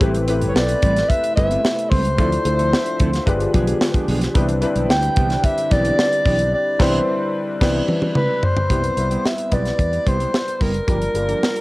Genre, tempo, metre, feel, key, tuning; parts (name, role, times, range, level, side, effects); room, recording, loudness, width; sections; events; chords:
polished 1980s jazz-funk pop; 110 BPM; 4/4; straight; C major; A4 = 440 Hz
warm grand piano; accompaniment; 0.0-11.6 s; G3 to C5; -24 LUFS; left 2 dB; analog chorus
chorused pulse-width pad; sustained chords; 0.0-8.7 s; C3 to E5; -29 LUFS; equal
mellow electric guitar; riff; 0.0-11.6 s; E3 to B4; -27 LUFS; right 3 dB; wide subtle chorus
fingered electric bass; bass; 0.0-11.3 s; F#1 to E2; -22 LUFS; equal
tight funk drum kit; drums; 0.0-11.6 s; crash cymbal, hi-hat, kick drum, snare drum, toms; -20 LUFS; equal; cassette tape
breathy soprano saxophone; melody; 0.5-11.6 s; Bb4 to G5; -21 LUFS; equal
light reverb, small room ambience; home recording on cassette; -16 LUFS; side -19 dB against mid
0.0-8.7 A section; 8.7-11.6 B section
band accent 6.5-8.7; drum fill 7.6-8.7
0.0 Am9; 2.2 Dm9; 3.3 G7b9; 4.4 Cmaj9; 8.7 Cmaj7; 10.9 Gm7